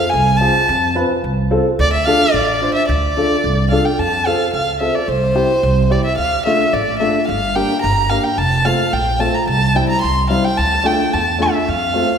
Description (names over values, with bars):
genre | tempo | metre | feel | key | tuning
klezmer | 109 BPM | 2/4 | straight | D dorian sharp4, F major from 4.0 s | A4 = 438 Hz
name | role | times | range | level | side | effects
dark violin | melody | 0.0-12.2 s | C5 to C6 | -17 LUFS | equal | none
upright bass | bass | 0.1-12.0 s | F1 to F2 | -20 LUFS | right 1 dB | none
dark upright piano | accompaniment | 0.4-12.1 s | G3 to C5 | -19 LUFS | left 1 dB | none
room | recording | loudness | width
wet scoring stage reverb, RT60 2.1 s | recorded in a church or concert hall | -14 LUFS | side -7 dB against mid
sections
0.0-4.0 A section; 4.0-12.2 B section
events
none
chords
0.0 F; 1.8 Dm; 4.0 F; 5.1 C; 6.2 Dm; 7.3 Gm; 8.4 F; 9.5 C; 10.6 Dm; 11.7 F